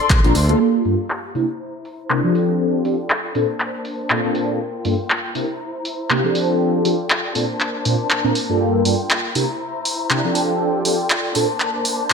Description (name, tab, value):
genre	filtered disco house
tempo	120 BPM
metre	4/4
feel	swing 57% on 16ths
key	unclear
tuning	A4 = 440 Hz
part	muted chamber string section	sustained chords	0.0-12.1 s	Bb3 to C6	-26 LUFS	left 3 dB	sidechain pumping, low-pass filter
part	modern bright fingered electric bass	bass	0.0-0.5 s	Bb1 to D2	-18 LUFS	equal	sidechain pumping, low-pass filter
part	punchy analog drum machine	drums	0.1-12.1 s	handclaps, hi-hat	-21 LUFS	equal	overdrive, sidechain pumping on hats, low-pass filter on hats, low-pass filter on snare, sidechain pumping on perc, low-pass filter on perc
part	mellow synth brass	accompaniment	0.2-12.1 s	G2 to C5	-19 LUFS	equal	chorus, phaser, sidechain pumping, low-pass filter
room	moderate lush hall reverb, RT60 1.6 s, digital ambience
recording	none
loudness	-17 LUFS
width	side -5 dB against mid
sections	0.6-12.1 A section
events	filter sweep on drum 0.6-12.1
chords	0.0 Bbmaj9; 0.6 Gm7; 1.4 C7; 2.4 F69; 3.4 Bbmaj9; 4.6 Gm7; 5.4 C7; 6.4 F69; 7.4 Bbmaj9; 8.6 Gm7; 9.4 C7; 10.4 F69; 11.4 Bbmaj9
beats	0.10 | 0.60 1.10 1.60 2.10 | 2.60 3.10 3.60 4.10 | 4.60 5.10 5.60 6.10 | 6.60 7.10 7.60 8.10 | 8.60 9.10 9.60 10.10 | 10.60 11.10 11.60 12.10